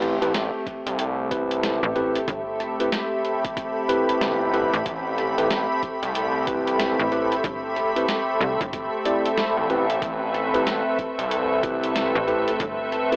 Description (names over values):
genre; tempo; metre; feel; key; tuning
glitch hop; 93 BPM; 4/4; swing 62% on 16ths; A minor; A4 = 440 Hz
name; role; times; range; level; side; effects
warm analog pad; sustained chords; 0.0-13.2 s; A3 to B4; -27 LUFS; equal; chorus, sidechain pumping
tine electric piano; stabs; 0.0-13.2 s; C4 to D5; -26 LUFS; equal; sidechain pumping, tape echo
gritty driven synth bass; bass; 0.0-12.1 s; G1 to C2; -27 LUFS; equal; tube saturation
boom bap sampler-style drum kit; drums; 0.0-13.2 s; hi-hat, rim click, snare drum; -29 LUFS; equal; overdrive
granular cloud pad; texture; 0.6-13.2 s; A4 to B5; -26 LUFS; equal; built-in reverb, sidechain pumping
electronic kick drum; drums; 0.7-12.8 s; none; -34 LUFS; equal; overdrive
slap-like FM bass; bass; 1.8-13.2 s; G1 to C2; -27 LUFS; equal; none
room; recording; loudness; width
light reverb; dry, gritty hardware recording, transformer saturation, AM radio sound; -21 LUFS; side -26 dB against mid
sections
0.0-13.2 A section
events
none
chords
0.0 Am7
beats
0.34 0.99 1.63 | 2.28 2.92 3.57 4.21 | 4.86 5.50 6.15 6.79 | 7.44 8.09 8.73 9.38 | 10.02 10.66 11.31 11.96 | 12.60